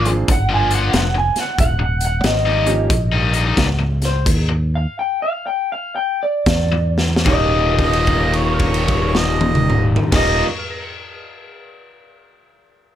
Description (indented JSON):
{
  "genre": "electric blues shuffle",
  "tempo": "74-92 BPM",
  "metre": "4/4",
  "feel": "swing 65% on 8ths",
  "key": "Eb mixolydian",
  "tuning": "A4 = 440 Hz",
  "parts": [
    { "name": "warm harmonica", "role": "second line", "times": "0.0-0.1, 7.8-10.4 s", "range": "Db5 to Eb5", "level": "-22 LUFS", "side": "right 5 dB", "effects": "overdrive" },
    { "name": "bright upright piano", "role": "accompaniment", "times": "0.0-2.9, 7.2-10.8 s", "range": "Eb2 to Db7", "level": "-25 LUFS", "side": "right 4 dB", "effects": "none" },
    { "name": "cranked stack guitar", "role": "riff", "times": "0.0-10.4 s", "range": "Eb2 to F4", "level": "-20 LUFS", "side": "left 5 dB", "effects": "overdrive" },
    { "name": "fingered electric bass", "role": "bass", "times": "0.0-10.4 s", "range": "Eb1 to E2", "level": "-19 LUFS", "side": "equal", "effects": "none" },
    { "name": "raw garage drum kit", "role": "drums", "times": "0.1-10.3 s", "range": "crash cymbal, hi-hat, kick drum, snare drum, toms", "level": "-20 LUFS", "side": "equal", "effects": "none" },
    { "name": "electric guitar through a small old amp", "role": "melody", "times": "0.3-10.4 s", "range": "C5 to Ab5", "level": "-21 LUFS", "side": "equal", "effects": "none" }
  ],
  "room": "little or no reverb",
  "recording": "none",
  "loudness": "-15 LUFS",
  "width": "side -11 dB against mid",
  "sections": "0.0-7.3 A section; 7.3-10.5 B section",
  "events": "slowing down 1.6-7.3; stop 4.3-6.5; drum fill 6.9-7.3; held note 7.3-10.0",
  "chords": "0.0 Bb7; 1.6 Eb7; 4.3 Eb; 6.5 N.C.; 7.3 Eb7",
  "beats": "0.29 0.94 | 1.59 2.24 2.90 3.58 | 4.26 4.97 5.71 6.47 | 7.26 8.07 8.89 9.70"
}